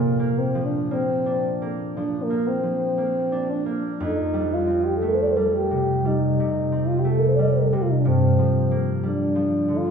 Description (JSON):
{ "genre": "classical, romantic duo for French horn and harp", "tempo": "55-62 BPM", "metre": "4/4", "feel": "rubato", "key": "Bb major", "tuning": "A4 = 439 Hz", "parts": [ { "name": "mellow French horn", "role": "melody", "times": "0.0-9.9 s", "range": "Bb3 to Eb5", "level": "-23 LUFS", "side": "equal", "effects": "none" }, { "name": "concert harp", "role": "accompaniment", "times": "0.0-9.9 s", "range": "F2 to D4", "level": "-22 LUFS", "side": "equal", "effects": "none" } ], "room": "wet recital hall reverb, RT60 1.5 s", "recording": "heard from further back in the room", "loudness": "-20 LUFS", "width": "side -6 dB against mid", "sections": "0.0-9.9 A section", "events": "none", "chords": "0.0 Bb; 4.0 Fadd9; 8.1 Gm7" }